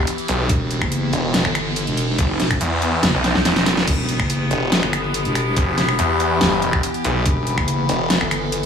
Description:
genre	heavy wobble dubstep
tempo	142 BPM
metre	4/4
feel	half-time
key	E harmonic minor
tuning	A4 = 440 Hz
part	evolving wavetable pad	sustained chords	0.0-8.7 s	E3 to A4	-23 LUFS	left 1 dB	phaser, built-in reverb, sidechain pumping
part	snarling distorted saw bass	bass	0.0-8.2 s	E1 to E2	-21 LUFS	equal	distortion, overdrive
part	dubstep drum kit	drums	0.1-8.7 s	crash cymbal, finger snaps, hi-hat, snare drum	-21 LUFS	equal	none
part	wobble bass	bass	0.5-8.7 s	E1 to B1	-22 LUFS	equal	chorus, overdrive
part	electronic kick drum	drums	0.5-7.7 s	none	-21 LUFS	equal	none
room	light reverb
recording	small room ambience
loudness	-16 LUFS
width	side -7 dB against mid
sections	0.0-8.7 A section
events	kick drops out 3.0-3.9; drum fill 3.2-3.9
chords	0.0 Em

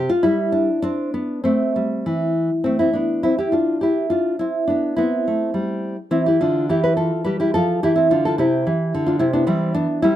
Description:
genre	classical, baroque-style dance for nylon-string guitar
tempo	98-112 BPM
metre	3/4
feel	rubato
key	A minor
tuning	A4 = 440 Hz
part	nylon-string guitar	solo	0.0-10.2 s	C3 to B4	-17 LUFS	equal	none
room	studio ambience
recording	dry, close 1970s-style studio recording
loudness	-17 LUFS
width	side -12 dB against mid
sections	0.0-2.7 A section; 2.7-10.2 A section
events	none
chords	0.0 N.C.; 0.8 C; 2.7 Am (rootless); 6.1 C; 9.5 C/E

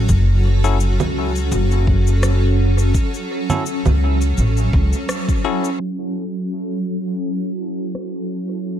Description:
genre	ambient dub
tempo	84 BPM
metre	4/4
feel	swing 55% on 16ths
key	F# minor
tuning	A4 = 437 Hz
part	granular cloud pad	sustained chords	0.0-8.8 s	F#3 to A4	-22 LUFS	equal	built-in reverb
part	upright bass	bass	0.0-4.9 s	F#1 to C#2	-16 LUFS	equal	none
part	electronic cabasa, congas and rim click	drums	0.1-8.8 s	none	-26 LUFS	right 3 dB	low-pass filter on perc, small room ambience, low-pass filter on snare, dub echo
part	electronic kick drum	drums	0.1-5.4 s	none	-18 LUFS	equal	small room ambience
part	bell-like tine electric piano	stabs	0.6-5.7 s	C#4 to A4	-28 LUFS	moving between left 9 dB and right 2 dB	auto-pan, dub echo
room	light reverb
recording	low-pass filter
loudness	-16 LUFS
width	side -10 dB against mid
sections	0.0-5.8 A section; 5.8-8.8 B section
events	band accent 5.1-5.4; filter sweep on drum 5.8-8.8; filter sweep on ambient pad 5.8-8.8; filter sweep 5.8-8.8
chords	0.0 F#m; 5.8 F#m7

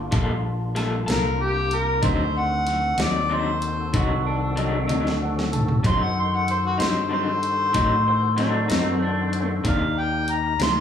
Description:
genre	slow blues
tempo	63 BPM (dotted quarters)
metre	12/8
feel	straight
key	unclear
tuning	A4 = 440 Hz
part	electric guitar through a small old amp	second line	0.0-9.5 s	C4 to C5	-28 LUFS	right 1 dB	lush chorus, slapback echo, analog delay
part	dark baby grand piano	accompaniment	0.0-10.8 s	D4 to A5	-36 LUFS	right 1 dB	slapback echo
part	tonewheel organ	sustained chords	0.0-10.8 s	Eb3 to C5	-31 LUFS	left 2 dB	overdrive, chorus vibrato, lush chorus
part	fingered electric bass	bass	0.0-10.8 s	Bb1 to A2	-25 LUFS	left 1 dB	none
part	electric guitar through a small old amp	accompaniment	0.1-10.8 s	C3 to A4	-29 LUFS	left 3 dB	tremolo, slapback echo
part	dubstep drum kit	drums	0.1-10.8 s	hi-hat, kick drum, snare drum, toms	-26 LUFS	equal	none
part	mellow harmonica	melody	1.1-10.8 s	F#4 to C6	-23 LUFS	left 1 dB	overdrive, slapback echo
room	moderate plate reverb, RT60 2.1 s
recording	live gig heard through the venue's PA, club reverb, studio ambience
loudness	-20 LUFS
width	side -8 dB against mid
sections	0.0-10.8 A section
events	drum fill 4.9-5.8; grand piano fill 4.9-5.8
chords	0.0 Gm9; 2.0 D7b9; 9.6 Cm9

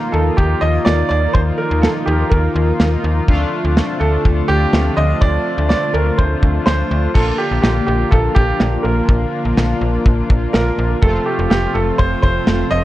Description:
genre	synth-pop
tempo	124 BPM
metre	4/4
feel	straight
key	unclear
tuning	A4 = 440 Hz
part	analog synth brass	accompaniment	0.0-12.8 s	A3 to F4	-22 LUFS	left 1 dB	chorus
part	ensemble organ-string	sustained chords	0.0-12.8 s	C3 to C4	-24 LUFS	left 1 dB	ensemble chorus
part	clear baby grand piano	melody	0.1-12.8 s	G4 to Eb5	-20 LUFS	right 2 dB	ping-pong delay
part	slap-like FM bass	bass	0.1-12.8 s	F1 to Eb2	-18 LUFS	equal	none
part	modern studio drum kit	drums	0.4-12.6 s	crash cymbal, kick drum, snare drum	-16 LUFS	equal	none
room	light reverb, small room ambience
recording	worn, warbling old tape, cassette tape, warbly pitch drift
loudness	-13 LUFS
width	side -15 dB against mid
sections	0.0-7.2 A section; 7.2-12.8 B section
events	none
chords	0.0 Ebsus2; 3.3 Dm7; 7.2 Bb; 11.0 F

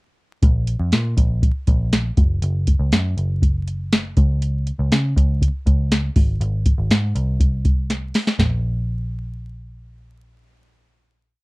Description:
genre	jangly indie pop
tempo	120 BPM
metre	4/4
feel	straight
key	unclear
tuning	A4 = 439 Hz
part	vintage muted picked electric bass	bass	0.4-11.4 s	Gb1 to Db3	-21 LUFS	equal	none
part	soft vintage rhythm box	drums	0.4-8.5 s	hi-hat, kick drum, snare drum, toms	-17 LUFS	equal	none
room	little or no reverb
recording	dry, close 1970s-style studio recording, vinyl crackle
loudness	-17 LUFS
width	side -24 dB against mid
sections	0.4-8.4 verse; 8.4-11.4 final note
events	drum fill 7.9-8.4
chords	none

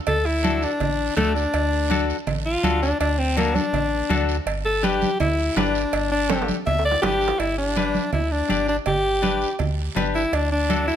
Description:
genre	latin, cumbia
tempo	164 BPM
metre	4/4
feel	straight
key	G major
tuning	A4 = 440 Hz
part	edgy alto saxophone	melody	0.1-11.0 s	A3 to E5	-22 LUFS	left 1 dB	none
part	metallic FM bass	bass	0.1-10.9 s	G1 to D2	-26 LUFS	right 1 dB	none
part	congas	percussion	0.1-10.9 s	none	-27 LUFS	right 2 dB	none
part	cowbell and timbales	percussion	0.1-10.9 s	none	-30 LUFS	right 8 dB	none
part	guiro	percussion	0.1-11.0 s	none	-37 LUFS	right 9 dB	none
part	semi-hollow electric guitar	accompaniment	0.4-11.0 s	D4 to D5	-27 LUFS	left 6 dB	none
room	moderate large studio reverb, RT60 1.0 s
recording	none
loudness	-19 LUFS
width	side -10 dB against mid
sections	0.0-7.4 A section; 7.4-11.0 B section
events	alto saxophone solo 0.0-7.4; drum fill 6.3-7.4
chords	0.0 D; 4.5 G; 10.3 D

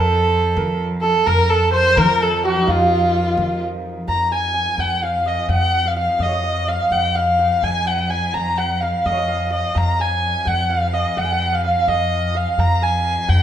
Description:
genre	Persian modal ensemble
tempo	85 BPM (dotted quarters)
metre	6/8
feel	straight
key	F dastgah homayun, F dastgah shur from 4.1 s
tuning	A4 = 441 Hz
part	clear kamancheh	melody	0.0-13.4 s	F4 to Bb5	-19 LUFS	equal	none
part	large celesta	second line	0.0-3.6 s	F5 to C6	-26 LUFS	left 4 dB	none
part	santur	second line	0.0-13.4 s	Eb4 to Bb5	-24 LUFS	right 4 dB	none
part	upright bass	bass	0.0-13.4 s	F2 to F3	-22 LUFS	equal	none
part	bright cello	drone	0.0-13.4 s	F2	-28 LUFS	equal	none
room	moderate recital hall reverb, RT60 1.7 s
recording	minimal, uncompressed stereo recording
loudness	-16 LUFS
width	side -10 dB against mid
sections	0.0-4.1 A section; 4.1-13.4 B section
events	none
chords	none

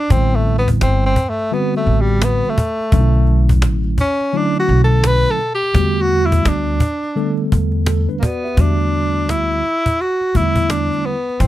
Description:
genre	hip hop, jazz-hop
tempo	85 BPM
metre	4/4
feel	swing 63% on 16ths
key	E minor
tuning	A4 = 442 Hz
part	breathy tenor saxophone	melody	0.0-11.5 s	G3 to B4	-18 LUFS	equal	none
part	mellow tine electric piano	accompaniment	0.1-11.5 s	D3 to E5	-21 LUFS	equal	medium stereo tremolo
part	upright bass	bass	0.1-11.5 s	G1 to E2	-16 LUFS	equal	none
part	cajon	drums	0.1-11.5 s	none	-19 LUFS	equal	none
room	light reverb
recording	none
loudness	-14 LUFS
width	side -14 dB against mid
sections	0.0-8.6 A section; 8.6-11.5 B section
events	tenor saxophone solo 0.0-8.6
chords	0.1 Am11; 2.9 Bm11; 5.7 Em11

